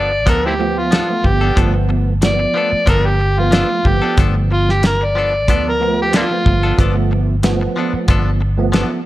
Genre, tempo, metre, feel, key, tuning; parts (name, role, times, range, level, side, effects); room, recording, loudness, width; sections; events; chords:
straight-eighth soul blues; 92 BPM; 4/4; swing 54% on 16ths; G mixolydian; A4 = 440 Hz
overdriven harmonica; melody; 0.0-6.8 s; Bb3 to D5; -18 LUFS; equal
direct-recorded clean electric guitar; stabs; 0.0-8.9 s; F3 to A4; -24 LUFS; left 3 dB
vintage muted fingered electric bass; bass; 0.0-8.8 s; G1 to D2; -17 LUFS; equal
barky tine electric piano; accompaniment; 0.3-9.0 s; F3 to B3; -21 LUFS; right 3 dB; ensemble chorus
cloth-damped thuddy drum kit; drums; 0.3-8.9 s; hi-hat, kick drum, snare drum; -16 LUFS; equal
light reverb, studio reverb; -13 LUFS; side -15 dB against mid
0.0-9.1 A section
0.0 G9